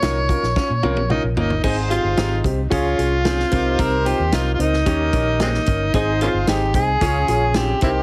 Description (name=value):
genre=uptempo 1960s-style soul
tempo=112 BPM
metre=4/4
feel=straight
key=unclear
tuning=A4 = 443 Hz
part: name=overdriven harmonica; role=melody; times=0.0-8.0 s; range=Ab3 to Db5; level=-24 LUFS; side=equal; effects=none
part: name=warm upright piano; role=accompaniment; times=0.0-8.0 s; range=Ab2 to Db5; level=-27 LUFS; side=equal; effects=none
part: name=archtop guitar, miked and amplified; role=riff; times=0.0-8.0 s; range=Bb3 to Ab4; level=-32 LUFS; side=equal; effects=none
part: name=vintage muted fingered electric bass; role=bass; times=0.0-8.0 s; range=G1 to Bb2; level=-25 LUFS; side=equal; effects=none
part: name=natural country drum kit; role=drums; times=0.0-7.9 s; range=crash cymbal, hi-hat, kick drum, snare drum, toms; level=-26 LUFS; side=equal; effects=none
part: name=warm horn section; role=second line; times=1.6-8.0 s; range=Eb4 to Db5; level=-31 LUFS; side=equal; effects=none
room=light reverb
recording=heavily compressed radio sound, multiband compression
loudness=-19 LUFS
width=mono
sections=0.0-1.6 A section; 1.6-8.0 B section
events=drum fill 0.6-1.6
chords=0.0 Bbm; 1.6 Ab; 2.7 Db; 3.5 Cm7; 4.9 Eb7; 5.9 Ab; 7.0 Db